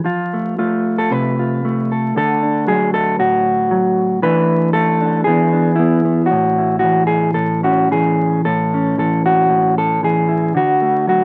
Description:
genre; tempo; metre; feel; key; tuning
folk, solo fingerstyle acoustic guitar; 115 BPM; 4/4; straight; A major; A4 = 443 Hz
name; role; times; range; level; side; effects
mellow electric guitar; solo; 0.0-11.2 s; A2 to B4; -16 LUFS; equal; none
room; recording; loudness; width
moderate studio reverb, RT60 0.8 s; very old 78 rpm record, vinyl crackle; -16 LUFS; mono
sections
0.0-8.4 A section; 8.4-11.2 B section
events
none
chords
0.1 F; 2.2 D; 4.2 E7sus4; 5.3 E7; 6.3 A; 10.5 D

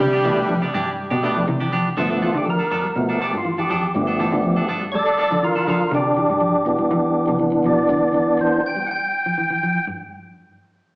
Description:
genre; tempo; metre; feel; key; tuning
afrobeat; 122 BPM; 4/4; straight; unclear; A4 = 440 Hz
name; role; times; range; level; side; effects
warm horn section; melody; 0.0-1.5 s; G3 to G4; -23 LUFS; equal; none
growling tenor saxophone; second line; 0.0-1.5 s; G3; -29 LUFS; equal; none
electric guitar at the edge of break-up; arpeggios; 0.0-10.0 s; G2 to G3; -26 LUFS; equal; none
dark cello; bass; 0.0-7.8 s; F2 to G3; -26 LUFS; equal; none
clean electric guitar; stabs; 0.1-5.8 s; E3 to A4; -25 LUFS; right 1 dB; none
percussive tonewheel organ; accompaniment; 0.2-9.9 s; E3 to G5; -19 LUFS; equal; chorus vibrato, stopped rotary speaker
room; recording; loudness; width
wet large studio reverb, RT60 1.4 s; band playing live in one room, small speaker sound; -17 LUFS; side -24 dB against mid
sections
0.0-2.0 A section; 2.0-9.9 B section; 9.9-11.0 C section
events
tonewheel organ solo 2.0-9.9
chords
0.0 Cmaj9; 2.0 G9; 5.9 Cmaj9; 9.9 N.C.

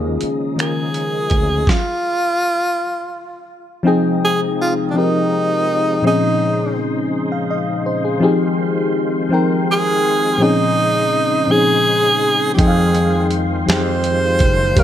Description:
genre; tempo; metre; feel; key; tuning
slow six-eight R&B; 55 BPM (dotted quarters); 6/8; straight; F minor; A4 = 440 Hz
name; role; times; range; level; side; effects
mellow FM electric piano; accompaniment; 0.0-14.8 s; Bb2 to G5; -18 LUFS; left 2 dB; chorus
percussive tonewheel organ; sustained chords; 0.0-14.8 s; C3 to C5; -26 LUFS; right 1 dB; overdrive, chorus vibrato, slow rotary speaker
fretless electric bass; bass; 0.0-1.6, 12.6-14.8 s; Gb1 to F2; -19 LUFS; right 1 dB; none
dusty soul sampler-style drum kit; drums; 0.2-1.9, 12.6-14.8 s; finger snaps, hi-hat, kick drum, snare drum; -17 LUFS; right 1 dB; none
breathy tenor saxophone; melody; 0.6-14.8 s; D4 to C5; -18 LUFS; right 1 dB; none
room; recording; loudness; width
light reverb; none; -14 LUFS; side -10 dB against mid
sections
0.0-3.9 A section; 3.9-14.8 B section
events
none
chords
0.0 Eb9sus4; 3.9 Fm7; 6.0 Bbm11; 8.2 Fm7; 10.4 Bbm11; 12.6 Fm7

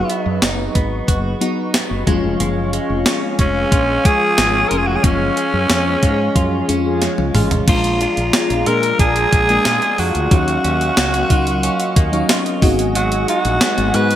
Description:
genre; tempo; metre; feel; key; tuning
1980s-style pop; 91 BPM; 4/4; straight; unclear; A4 = 440 Hz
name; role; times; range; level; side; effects
raspy alto saxophone; melody; 0.0-14.2 s; C#4 to B4; -18 LUFS; equal; digital delay
FM electric piano with soft pad layer; accompaniment; 0.0-14.2 s; E#3 to E#5; -22 LUFS; left 3 dB; chorus
warm analog pad; sustained chords; 0.0-14.2 s; F#3 to C#6; -26 LUFS; equal; chorus
direct-recorded clean electric guitar; riff; 0.0-14.2 s; E#3 to F#4; -26 LUFS; right 3 dB; wide subtle chorus, digital delay
clean 12-bit digital drum machine; drums; 0.1-14.2 s; crash cymbal, hi-hat, kick drum, snare drum, toms; -17 LUFS; equal; overdrive, gated reverb
woody fretless electric bass; bass; 0.3-14.2 s; E#1 to A#2; -21 LUFS; equal; analog chorus
mellow synth brass; stabs; 6.5-7.1 s; C#4 to G#4; -25 LUFS; left 1 dB; chorus, digital delay
room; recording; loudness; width
moderate plate reverb, RT60 1.8 s; bright 1980s-style digital production; -14 LUFS; side -11 dB against mid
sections
0.0-7.7 A section; 7.7-14.2 B section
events
band accent 5.0-7.7; drum fill 7.0-7.7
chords
0.0 B; 2.1 C#; 7.7 A#7; 10.3 D#m9; 12.6 G#m7

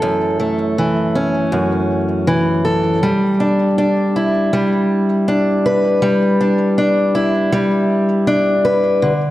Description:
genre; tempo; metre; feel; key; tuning
folktronica; 80 BPM; 4/4; swing 56% on 16ths; unclear; A4 = 440 Hz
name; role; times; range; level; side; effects
picked acoustic archtop guitar; solo; 0.0-9.3 s; F#2 to B4; -14 LUFS; equal; none
room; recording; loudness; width
moderate concert hall reverb, RT60 2.0 s; dark, warm production, vinyl crackle; -14 LUFS; side -15 dB against mid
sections
0.0-9.3 A section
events
none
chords
0.0 F#m7; 3.0 G6

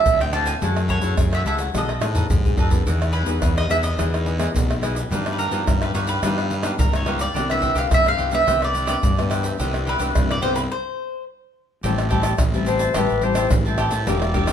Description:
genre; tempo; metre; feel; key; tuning
samba and choro; 107 BPM; 4/4; straight; unclear; A4 = 436 Hz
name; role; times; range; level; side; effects
mandolin; melody; 0.0-11.2 s; Bb4 to A5; -23 LUFS; right 2 dB; none
nylon-string guitar; accompaniment; 0.0-14.5 s; F#2 to G#4; -28 LUFS; left 6 dB; none
fuzz fingered electric bass; bass; 0.1-14.5 s; E1 to A2; -24 LUFS; equal; overdrive
tube shaker, surdo, pandeiro and tamborim; percussion; 0.1-14.5 s; none; -23 LUFS; right 1 dB; none
cavaquinho; accompaniment; 0.3-14.5 s; D4 to A5; -28 LUFS; right 2 dB; none
warm clarinet; second line; 12.7-13.5 s; B4 to C5; -22 LUFS; left 6 dB; none
room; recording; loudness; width
moderate stone room reverb, RT60 1.1 s; band playing live in one room, lossy compression artefacts; -18 LUFS; side -9 dB against mid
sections
0.0-11.8 A section; 11.8-14.5 B section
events
drum fill 1.7-2.9; stop 10.7-11.8; clarinet solo 11.8-14.5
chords
0.0 Dm9; 0.6 F#m9; 1.7 B6; 2.9 Emaj7; 5.1 Gaug7; 7.4 Cmaj9; 11.8 Am7

